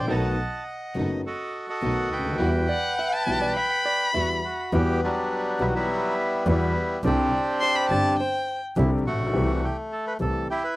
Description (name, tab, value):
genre	tango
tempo	104 BPM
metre	4/4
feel	rubato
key	E minor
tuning	A4 = 440 Hz
part	bandoneon	melody	0.0-10.8 s	F#3 to A5	-26 LUFS	equal	cassette tape
part	warm concert grand piano	accompaniment	0.0-10.4 s	F#1 to G4	-27 LUFS	left 2 dB	cassette tape
part	dark double bass	bass	0.0-10.4 s	F#1 to E2	-27 LUFS	right 1 dB	none
part	rich studio string section	stabs	0.1-4.4 s	G3 to A4	-34 LUFS	right 3 dB	cassette tape
part	hollow-body jazz guitar	second line	2.7-8.6 s	C5 to F#5	-31 LUFS	right 3 dB	cassette tape
part	warm violin	second line	2.7-8.6 s	F#5 to C6	-26 LUFS	left 2 dB	cassette tape
room	light reverb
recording	home recording on cassette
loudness	-22 LUFS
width	side -18 dB against mid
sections	0.0-4.7 A section; 4.7-10.8 A section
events	none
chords	0.1 B7; 2.4 Emadd9; 7.0 Csus2; 9.3 Am7/C